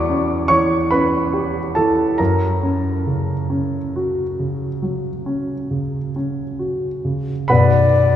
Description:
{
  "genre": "classical, romantic duo for flute and grand piano",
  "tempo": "46 BPM (dotted quarters)",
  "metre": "12/8",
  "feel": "rubato",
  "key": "unclear",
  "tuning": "A4 = 441 Hz",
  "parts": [
    { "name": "warm concert grand piano", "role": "accompaniment", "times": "0.0-8.2 s", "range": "B0 to D6", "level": "-17 LUFS", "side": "equal", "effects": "none" },
    { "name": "mellow concert flute", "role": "melody", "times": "7.5-8.2 s", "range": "D5", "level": "-16 LUFS", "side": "left 4 dB", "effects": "none" }
  ],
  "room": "wet cathedral reverb, RT60 4.8 s",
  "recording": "recorded in a church or concert hall, nothing above 10.5 kHz",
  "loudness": "-17 LUFS",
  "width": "side -10 dB against mid",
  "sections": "0.0-7.5 A section",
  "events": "none",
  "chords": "0.0 C#m7b5/E; 2.2 F#; 7.5 Bm"
}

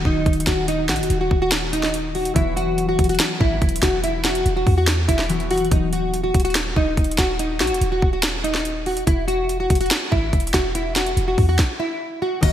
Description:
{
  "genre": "hip hop, trap",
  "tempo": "143 BPM",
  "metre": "4/4",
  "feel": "half-time",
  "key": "unclear",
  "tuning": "A4 = 442 Hz",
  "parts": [
    { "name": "concert harp", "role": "accompaniment", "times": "0.0-5.8, 12.4-12.5 s", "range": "Eb3 to Gb4", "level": "-27 LUFS", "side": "left 4 dB", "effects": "none" },
    { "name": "clean 808-style bass", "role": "bass", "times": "0.0-12.5 s", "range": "Eb1 to E2", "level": "-24 LUFS", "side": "equal", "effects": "none" },
    { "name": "nylon-string guitar", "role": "melody", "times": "0.1-12.5 s", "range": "Eb4 to Eb5", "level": "-22 LUFS", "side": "equal", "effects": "analog chorus" },
    { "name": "trap drum kit", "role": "drums", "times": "0.1-12.5 s", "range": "crash cymbal, hi-hat, kick drum, snare drum", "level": "-21 LUFS", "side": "equal", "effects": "gated reverb" },
    { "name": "impact", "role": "sound effects", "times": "12.4-12.5 s", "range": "none", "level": "-32 LUFS", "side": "equal", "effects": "none" }
  ],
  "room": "light reverb",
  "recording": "bright 1980s-style digital production",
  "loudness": "-18 LUFS",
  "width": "side -11 dB against mid",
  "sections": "0.0-12.4 A section",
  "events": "stop 11.6-12.4",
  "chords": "0.0 Ebm; 2.4 Esus2; 5.7 Eb5; 9.1 Esus2"
}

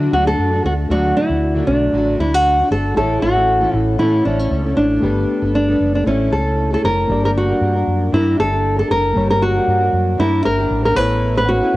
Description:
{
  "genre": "acoustic pop",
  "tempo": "116 BPM",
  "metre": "4/4",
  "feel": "swing 55% on 16ths",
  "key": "unclear",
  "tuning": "A4 = 437 Hz",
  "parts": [
    { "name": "nylon-string guitar", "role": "melody", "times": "0.0-11.8 s", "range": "C#4 to B4", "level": "-16 LUFS", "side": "equal", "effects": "none" },
    { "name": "barky reed electric piano", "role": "accompaniment", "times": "0.0-11.8 s", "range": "G3 to D5", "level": "-26 LUFS", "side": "left 2 dB", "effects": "none" },
    { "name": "fingerpicked plugged-in steel-string acoustic guitar", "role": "accompaniment", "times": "0.0-11.8 s", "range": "A2 to B4", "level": "-22 LUFS", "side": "equal", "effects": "double-tracked left and right" },
    { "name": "mellow fretless electric bass", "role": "bass", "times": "0.0-11.8 s", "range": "F#1 to A2", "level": "-20 LUFS", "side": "equal", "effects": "none" }
  ],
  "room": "light reverb",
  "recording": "home recording on cassette",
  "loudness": "-14 LUFS",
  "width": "side -17 dB against mid",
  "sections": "0.0-7.1 A section; 7.1-11.8 B section",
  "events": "none",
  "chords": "0.0 D; 3.0 A; 5.0 Gadd9; 6.1 A; 7.1 Gm; 11.0 Aadd9"
}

